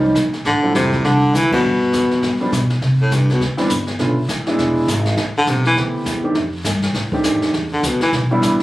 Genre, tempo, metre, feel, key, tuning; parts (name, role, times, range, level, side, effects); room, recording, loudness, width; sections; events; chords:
jazz, small-group swing and bop; 203 BPM; 4/4; swing 60% on 8ths; C major; A4 = 440 Hz
warm upright piano; accompaniment; 0.0-8.6 s; D3 to G4; -18 LUFS; right 1 dB
upright bass; bass; 0.0-8.6 s; E1 to C3; -20 LUFS; equal
jazz brush drum kit; drums; 0.2-8.6 s; brushed snare drum, crash cymbal, hi-hat, kick drum, snare drum; -24 LUFS; equal
breathy tenor saxophone; second line; 0.4-2.5 s; B3 to E4; -25 LUFS; right 2 dB
warm baritone saxophone; melody; 0.5-8.1 s; G2 to E3; -16 LUFS; left 1 dB; plate reverb
moderate small room reverb, RT60 0.5 s; recorded on a phone in the room, club reverb; -15 LUFS; side -17 dB against mid
0.0-2.8 A section; 2.8-8.6 B section
band accent 1.5; baritone saxophone solo 2.8-8.6
0.5 Dm11; 1.6 G7; 2.8 Csus2; 4.0 Bm7b5; 4.6 E7; 5.2 Am7; 6.4 F13; 7.5 Em7